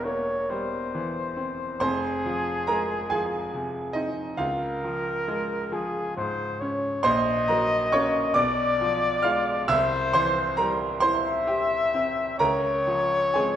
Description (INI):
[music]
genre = classical, romantic duo for trumpet and grand piano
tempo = 45 BPM (dotted quarters)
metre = 6/8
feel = rubato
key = unclear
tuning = A4 = 441 Hz
[part]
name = mellow trumpet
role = melody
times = 0.0-13.6 s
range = Ab4 to E5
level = -26 LUFS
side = left 2 dB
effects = none
[part]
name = clear grand piano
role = accompaniment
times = 0.0-13.6 s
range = E1 to F6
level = -25 LUFS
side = right 2 dB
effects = none
[sound]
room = wet recital hall reverb, RT60 1.6 s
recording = none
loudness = -23 LUFS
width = side -10 dB against mid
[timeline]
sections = 0.0-13.6 A section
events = none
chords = 0.0 C7/E; 1.8 Fm; 4.4 Db; 7.0 Gb/Bb; 8.3 Bdim7; 9.7 C; 12.4 Dbmaj7